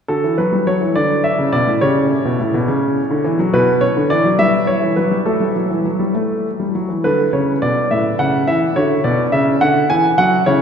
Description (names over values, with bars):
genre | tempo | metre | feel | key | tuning
classical-period piano sonatina | 70 BPM (dotted quarters) | 6/8 | rubato | unclear | A4 = 440 Hz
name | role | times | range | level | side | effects
warm grand piano | solo | 0.1-10.6 s | A2 to G#5 | -14 LUFS | equal | none
room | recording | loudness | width
wet cathedral reverb, RT60 5.7 s | recorded in a church or concert hall | -14 LUFS | side -7 dB against mid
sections
0.1-10.6 A section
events
none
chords
0.1 A7; 3.5 Bm; 4.4 Em/G; 5.3 Esus24; 7.0 D5; 7.9 A; 8.8 Bm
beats
| 0.09 0.96 | 1.82 2.68 | 3.53 4.39 | 5.25 6.14 | 7.04 7.92 | 8.77 9.62 | 10.47